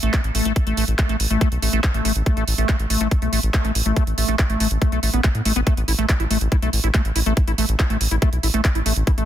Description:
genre	psychedelic trance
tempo	141 BPM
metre	4/4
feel	straight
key	unclear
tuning	A4 = 439 Hz
part	liquid acid bass	riff	0.0-9.2 s	A3 to E4	-24 LUFS	moving between left 5 dB and right 4 dB	chorus, auto-pan, sidechain pumping, digital delay
part	round analog bass	bass	0.0-9.2 s	A1 to A2	-21 LUFS	equal	none
part	drum and bass drum kit	drums	0.0-9.3 s	handclaps, hi-hat	-25 LUFS	right 2 dB	overdrive
part	electronic kick drum	drums	0.1-9.2 s	none	-18 LUFS	equal	none
room	digital ambience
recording	dense, heavily limited modern master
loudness	-17 LUFS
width	side -11 dB against mid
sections	0.0-9.3 A section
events	none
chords	0.0 A5

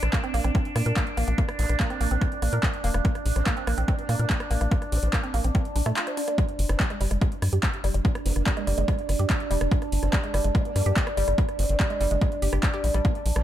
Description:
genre	psychedelic trance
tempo	144 BPM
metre	4/4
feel	straight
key	G phrygian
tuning	A4 = 440 Hz
part	vowel-sweep wobble bass	second line	0.0-13.4 s	Bb3 to D4	-42 LUFS	right 3 dB	none
part	overtone-sweeping drone	sustained chords	0.0-13.4 s	D4	-31 LUFS	right 2 dB	chorus, built-in reverb, sidechain pumping
part	tight sequencer bass	bass	0.0-13.4 s	F1 to Bb2	-24 LUFS	equal	none
part	big-room dance drum kit	drums	0.0-13.4 s	handclaps, hi-hat, rim click	-32 LUFS	equal	overdrive
part	woody wave-folded pluck	riff	0.1-13.1 s	G3 to C5	-33 LUFS	moving between left 6 dB and right 8 dB	chorus, auto-pan, sidechain pumping, dub echo
part	electronic kick drum	drums	0.1-13.1 s	none	-24 LUFS	equal	none
room	digital ambience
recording	none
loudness	-22 LUFS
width	side -12 dB against mid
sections	0.0-13.4 A section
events	none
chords	0.0 Bb5; 6.4 G5

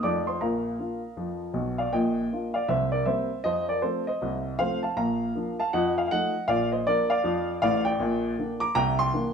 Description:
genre	jazz, stride piano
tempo	158 BPM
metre	4/4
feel	swing 63% on 8ths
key	Bb major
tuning	A4 = 439 Hz
part	warm baby grand piano	solo	0.0-9.3 s	A1 to D6	-24 LUFS	equal	none
room	wet studio reverb, RT60 0.8 s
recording	band playing live in one room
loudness	-24 LUFS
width	side -6 dB against mid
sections	0.0-1.9 A section; 1.9-9.3 B section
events	none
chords	0.0 F7; 0.4 Bb; 2.7 C7; 3.5 F7; 5.0 Bb; 5.7 F7b9; 6.5 Bb; 8.0 Gm/Bb; 8.8 C9

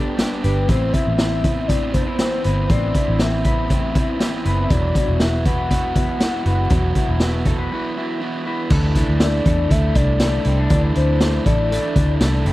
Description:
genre	jangly indie pop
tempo	120 BPM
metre	4/4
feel	straight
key	unclear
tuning	A4 = 440 Hz
part	soft octave-layered synth lead	melody	0.0-12.5 s	A4 to F#5	-25 LUFS	left 2 dB	chorus, slapback echo
part	crunchy overdriven guitar	accompaniment	0.0-12.5 s	E2 to G4	-25 LUFS	right 4 dB	none
part	electric guitar through a small old amp	arpeggios	0.0-12.5 s	E3 to B4	-27 LUFS	left 4 dB	slapback echo
part	vintage muted fingered electric bass	bass	0.0-12.5 s	E1 to E2	-20 LUFS	equal	none
part	raw garage drum kit	drums	0.2-12.5 s	crash cymbal, hi-hat, kick drum, snare drum	-20 LUFS	equal	none
room	little or no reverb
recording	dry, close 1970s-style studio recording, vinyl crackle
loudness	-16 LUFS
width	side -17 dB against mid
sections	0.0-8.7 A section; 8.7-12.5 B section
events	break 7.7-8.7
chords	0.0 G; 0.7 Amadd9; 4.7 Esus2; 8.7 Dsus2

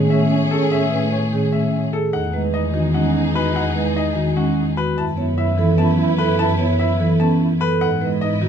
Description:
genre	classical, minimalist pattern music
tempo	296 BPM (eighths)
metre	7/8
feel	straight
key	E major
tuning	A4 = 440 Hz
part	warm French horn	second line	0.0-8.5 s	C#4 to E4	-27 LUFS	right 4 dB	none
part	marimba with soft mallets	accompaniment	0.0-8.5 s	D#3 to B3	-20 LUFS	left 1 dB	none
part	warm studio string section	sustained chords	0.0-8.5 s	C#4 to D#5	-28 LUFS	left 1 dB	none
part	vibraphone with soft mallets	arpeggios	0.0-8.5 s	C#4 to C#5	-24 LUFS	right 8 dB	none
part	dark studio double bass section	bass	0.0-8.5 s	E2 to A2	-24 LUFS	right 1 dB	none
part	bright baby grand piano	melody	0.1-8.5 s	A4 to A5	-26 LUFS	left 6 dB	none
room	moderate large studio reverb, RT60 1.3 s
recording	close, detailed microphones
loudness	-16 LUFS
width	side -8 dB against mid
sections	0.0-8.5 A section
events	none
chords	0.0 Amaj9; 2.1 Emaj9; 5.0 B7sus4/F#; 7.8 Emaj9/G#

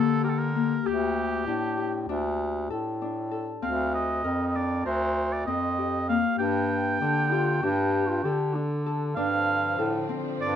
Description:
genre	contemporary instrumental, chamber music in an uneven meter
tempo	195 BPM (eighths)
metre	9/8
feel	straight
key	G minor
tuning	A4 = 440 Hz
part	warm oboe	melody	0.0-10.5 s	G4 to G5	-29 LUFS	right 3 dB	none
part	Celtic harp	arpeggios	0.0-10.6 s	Bb3 to Bb4	-30 LUFS	left 8 dB	none
part	clear bass clarinet	bass	0.0-10.6 s	D2 to D3	-28 LUFS	equal	none
part	dark duduk	second line	7.0-9.2 s	D4 to G4	-30 LUFS	left 4 dB	none
part	dark studio string section	sustained chords	9.2-10.6 s	D3 to C4	-35 LUFS	equal	none
room	moderate studio reverb, RT60 0.8 s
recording	none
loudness	-24 LUFS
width	side -9 dB against mid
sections	0.0-9.2 A section; 9.2-10.6 B section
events	none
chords	0.0 Gm; 0.8 Dsus4; 3.6 Bbadd9/D; 6.4 Gsus2; 9.2 Dm7/G

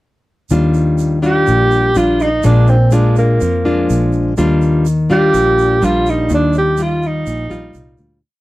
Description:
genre	bossa nova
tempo	124 BPM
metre	4/4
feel	straight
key	Eb major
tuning	A4 = 440 Hz
part	nylon-string guitar	accompaniment	0.5-8.2 s	Bb2 to F4	-14 LUFS	left 1 dB	none
part	fingered electric bass	bass	0.5-8.2 s	Bb1 to F2	-19 LUFS	equal	none
part	egg shaker	percussion	0.5-8.2 s	none	-37 LUFS	right 8 dB	none
part	mellow tenor saxophone	melody	1.3-8.0 s	Bb3 to G4	-15 LUFS	right 1 dB	none
room	light reverb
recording	worn, warbling old tape, cassette tape, warbly pitch drift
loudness	-11 LUFS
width	side -18 dB against mid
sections	0.5-8.2 A section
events	fade-out 6.3-8.2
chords	0.5 Ebmaj9; 2.4 Bb7; 4.4 Ebmaj9

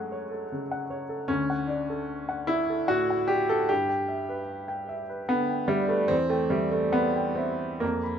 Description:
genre	classical, romantic character piece for solo piano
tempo	74 BPM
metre	3/4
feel	rubato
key	unclear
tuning	A4 = 440 Hz
part	warm upright piano	solo	0.0-8.2 s	D2 to Cb6	-25 LUFS	equal	none
room	light reverb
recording	close, detailed microphones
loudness	-25 LUFS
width	side -8 dB against mid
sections	0.0-8.2 A section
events	none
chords	0.0 F#m; 1.3 D; 3.7 G6; 6.1 C/E

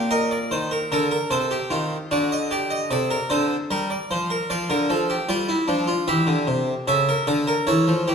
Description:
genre	classical, baroque-style 3-part fugue for harpsichord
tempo	75 BPM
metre	3/4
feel	straight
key	G minor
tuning	A4 = 437 Hz
part	harpsichord	solo	0.0-8.1 s	Bb2 to F5	-20 LUFS	equal	none
room	wet recital hall reverb, RT60 1.7 s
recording	none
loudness	-20 LUFS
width	side -6 dB against mid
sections	0.0-8.1 A section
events	none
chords	0.0 Gm/Bb (rootless); 1.3 Am7b5/C; 2.1 D; 3.7 Gm; 4.5 Dm; 6.1 Cadd9; 6.9 A/C#

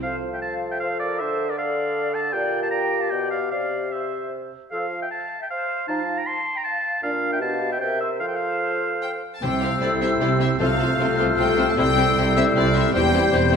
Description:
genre	quick classical-period movement for symphony orchestra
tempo	154 BPM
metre	3/4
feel	rubato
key	F major, C major from 9.4 s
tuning	A4 = 439 Hz
part	bright small flute group	second line	0.0-13.6 s	Bb4 to G6	-30 LUFS	left 3 dB	none
part	clear oboe	second line	0.0-13.6 s	C5 to C6	-26 LUFS	right 1 dB	none
part	dark clarinet	second line	0.0-13.6 s	D4 to C5	-28 LUFS	left 4 dB	none
part	mellow bassoon	accompaniment	0.0-13.6 s	Bb2 to C4	-29 LUFS	right 2 dB	none
part	rich chamber viola section	accompaniment	0.0, 9.4-13.6 s	C4 to F4	-28 LUFS	equal	none
part	clear studio violin section	melody	9.0-13.5 s	D5 to A5	-27 LUFS	left 6 dB	none
part	rich studio violin section	second line	9.4-13.6 s	G4 to C5	-31 LUFS	left 4 dB	none
part	mellow French horn section	sustained chords	9.4-13.6 s	G3 to F4	-26 LUFS	left 5 dB	none
part	rich symphonic double bass section	bass	9.4-13.6 s	E1 to C2	-26 LUFS	right 5 dB	none
part	warm chamber cello section	bass	9.4-13.6 s	E2 to C3	-26 LUFS	right 2 dB	none
part	timpani	percussion	9.4-11.2 s	C3	-33 LUFS	left 1 dB	none
room	moderate scoring stage reverb, RT60 1.4 s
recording	none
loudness	-20 LUFS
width	side -6 dB against mid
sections	0.0-9.4 A section; 9.4-13.6 B section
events	none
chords	0.0 F; 1.2 Dm; 2.3 Gm/Bb; 3.1 G7/B; 3.5 C; 4.7 F; 7.0 Bb; 7.4 G7/B; 7.8 C7; 8.2 F; 9.4 C; 10.6 F/C; 11.8 C; 12.9 C/E

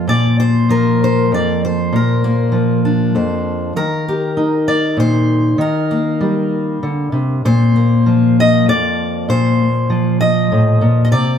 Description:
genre	folk, solo fingerstyle acoustic guitar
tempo	98 BPM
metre	3/4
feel	straight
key	Bb major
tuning	A4 = 439 Hz
part	fingerpicked steel-string acoustic guitar	solo	0.0-11.4 s	F2 to Eb5	-12 LUFS	left 1 dB	none
room	moderate stone room reverb, RT60 1.0 s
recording	band playing live in one room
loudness	-12 LUFS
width	side -8 dB against mid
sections	0.1-11.4 A section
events	none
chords	0.1 Bbadd9; 3.8 Eb; 7.5 Bbadd9

